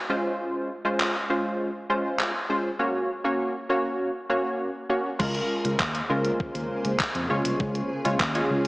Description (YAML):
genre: dance-pop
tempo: 100 BPM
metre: 4/4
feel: straight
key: Db major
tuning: A4 = 439 Hz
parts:
  - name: funky polysynth comp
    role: accompaniment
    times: 0.1-8.7 s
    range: Ab3 to Db5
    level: -26 LUFS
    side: equal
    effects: chorus, sidechain pumping
  - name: gated 80s digital drum machine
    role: drums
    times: 1.0-8.7 s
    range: crash cymbal, handclaps, hi-hat, kick drum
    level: -28 LUFS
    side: equal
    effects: gated reverb, overdrive
  - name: granular cloud pad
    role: sustained chords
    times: 5.9-8.7 s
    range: Db3 to C5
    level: -32 LUFS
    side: equal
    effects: built-in reverb, sidechain pumping
  - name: tine electric piano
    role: bass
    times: 5.2-8.7 s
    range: C2 to F2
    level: -29 LUFS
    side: equal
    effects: overdrive, sidechain pumping
room: moderate lush hall reverb, RT60 2.6 s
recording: worn, warbling old tape, cassette tape, warbly pitch drift, small speaker sound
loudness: -24 LUFS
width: side -22 dB against mid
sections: 0.0-5.2 A section; 5.2-8.7 B section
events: none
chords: 0.1 Dbmaj7; 2.8 Gb; 5.2 Bbm7/Db; 7.3 Db